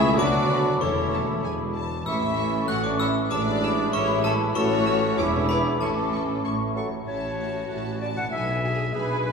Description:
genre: cinematic, playful, whimsical film cue.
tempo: 96 BPM.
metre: 2/4.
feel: straight.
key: A major.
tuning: A4 = 440 Hz.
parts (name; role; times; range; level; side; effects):
glockenspiel with brass mallets; melody; 0.0-6.4 s; A5 to F#6; -31 LUFS; left 2 dB; none.
bright large flute ensemble; second line; 0.0-6.8 s; A5 to D6; -34 LUFS; left 2 dB; none.
dark cor anglais; second line; 0.0-6.4 s; A3 to F#4; -31 LUFS; right 1 dB; none.
rich studio violin section; second line; 0.0-9.3 s; C#4 to F#5; -31 LUFS; left 4 dB; none.
warm clarinet; second line; 0.0-9.3 s; F#4 to F#5; -31 LUFS; left 1 dB; none.
mellow bassoon; accompaniment; 0.0-6.9 s; E3 to F#3; -33 LUFS; right 4 dB; none.
warm studio viola section; accompaniment; 0.0-9.3 s; C#4 to B4; -32 LUFS; right 2 dB; none.
mellow French horn section; sustained chords; 0.0-6.7 s; G#3 to E4; -31 LUFS; equal; none.
concert harp; arpeggios; 0.0-9.3 s; E2 to A5; -33 LUFS; left 5 dB; none.
rich studio cello section; bass; 0.0-9.3 s; C#2 to B2; -32 LUFS; right 2 dB; none.
rich studio double bass section; bass; 0.0-9.3 s; E1 to D2; -34 LUFS; right 3 dB; none.
warm tuba; bass; 0.0-9.3 s; E1 to D2; -33 LUFS; right 3 dB; none.
warm studio violin section; melody; 0.2-9.3 s; G#5 to E6; -37 LUFS; left 1 dB; none.
room: wet recital hall reverb, RT60 1.4 s.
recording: recorded in a church or concert hall.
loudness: -22 LUFS.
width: side -5 dB against mid.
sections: 0.0-7.1 A section; 7.1-9.3 B section.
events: none.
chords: 0.2 Bm/D; 0.8 A/E; 1.4 E; 2.1 A; 3.3 E7/A; 4.6 A; 5.2 E7; 5.8 A; 8.3 E7/B.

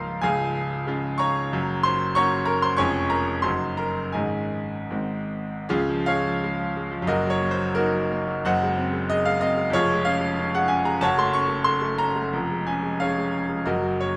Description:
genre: classical, romantic character piece for solo piano.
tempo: 75-98 BPM.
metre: 2/4.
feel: rubato.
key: Db major.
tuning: A4 = 440 Hz.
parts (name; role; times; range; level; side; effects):
bright grand piano; solo; 0.0-14.2 s; Db1 to Db6; -24 LUFS; equal; none.
room: moderate recital hall reverb, RT60 1.6 s.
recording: none.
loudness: -24 LUFS.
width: mono.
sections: 0.0-5.7 A section; 5.7-14.2 B section.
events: none.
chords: 0.2 Db; 1.5 Gb; 2.8 Db/F; 3.5 Ebm7/Gb; 4.2 Absus4; 4.9 Ab; 5.7 Db; 7.1 Ebm/Gb; 8.4 Ab7/Gb; 9.7 Db/F; 11.0 Gbm; 12.3 Db/F.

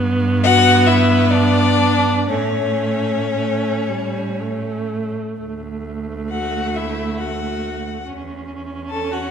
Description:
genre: classical, slow romantic movement for string quartet.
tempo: 55-72 BPM.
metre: 3/4.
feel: rubato.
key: D major.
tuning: A4 = 440 Hz.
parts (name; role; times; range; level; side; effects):
rich viola; accompaniment; 0.0-9.3 s; G3 to C#4; -22 LUFS; right 1 dB; none.
clear cello; bass; 0.0-9.3 s; D2 to A2; -23 LUFS; right 4 dB; none.
warm violin; melody; 0.4-9.3 s; C#5 to A5; -20 LUFS; left 6 dB; none.
rich violin; second line; 0.4-9.3 s; C#4 to A4; -23 LUFS; left 1 dB; none.
room: wet concert hall reverb, RT60 1.9 s.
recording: minimal, uncompressed stereo recording.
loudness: -16 LUFS.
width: side -7 dB against mid.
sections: 0.0-9.3 A section.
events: none.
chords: 0.0 Gmaj7; 2.3 A; 5.4 D; 8.1 A/E.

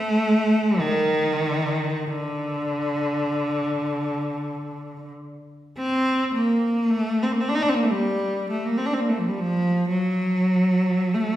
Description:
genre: classical, free, expressive piece for unaccompanied cello.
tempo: 37-62 BPM.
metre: 4/4.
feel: rubato.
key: unclear.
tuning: A4 = 439 Hz.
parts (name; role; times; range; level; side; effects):
rich cello; solo; 0.0-11.4 s; D3 to Eb4; -21 LUFS; equal; none.
room: wet recital hall reverb, RT60 1.5 s.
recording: recorded in a church or concert hall.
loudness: -21 LUFS.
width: side -13 dB against mid.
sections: 0.0-5.8 A section; 5.8-11.4 B section.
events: none.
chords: none.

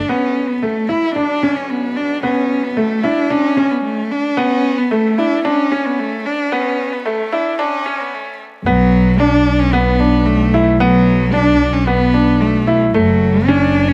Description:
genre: piano and strings electronica.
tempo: 112 BPM.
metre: 4/4.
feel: straight.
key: B minor.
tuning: A4 = 440 Hz.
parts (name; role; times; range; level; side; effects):
warm cello; melody; 0.0-13.9 s; F#3 to E4; -19 LUFS; equal; none.
warm studio double bass section; bass; 0.0-13.9 s; F#1 to B1; -23 LUFS; equal; high-pass filter.
warm upright piano; riff; 0.1-13.9 s; A3 to E4; -19 LUFS; equal; delay.
room: moderate recital hall reverb, RT60 1.4 s, small room ambience.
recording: high-pass filter.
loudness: -15 LUFS.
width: mono.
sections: 0.1-8.7 A section; 8.7-13.9 B section.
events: build-up 0.1-8.7; drop 8.7-13.9.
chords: 0.1 Bm; 4.4 F#m; 8.7 Bm; 12.9 F#m.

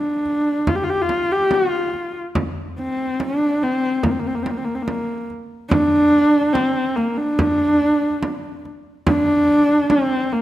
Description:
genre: mongolian traditional, Mongolian folk.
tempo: 72 BPM.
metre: 4/4.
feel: straight.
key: unclear.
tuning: A4 = 440 Hz.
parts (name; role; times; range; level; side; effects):
dark horsehead fiddle; melody; 0.0-10.4 s; Bb3 to G4; -17 LUFS; equal; none.
frame drum; percussion; 0.3-10.4 s; none; -24 LUFS; right 1 dB; none.
room: moderate scoring stage reverb, RT60 1.6 s.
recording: none.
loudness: -17 LUFS.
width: side -14 dB against mid.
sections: 0.0-5.7 A section; 5.7-10.4 B section.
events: none.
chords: none.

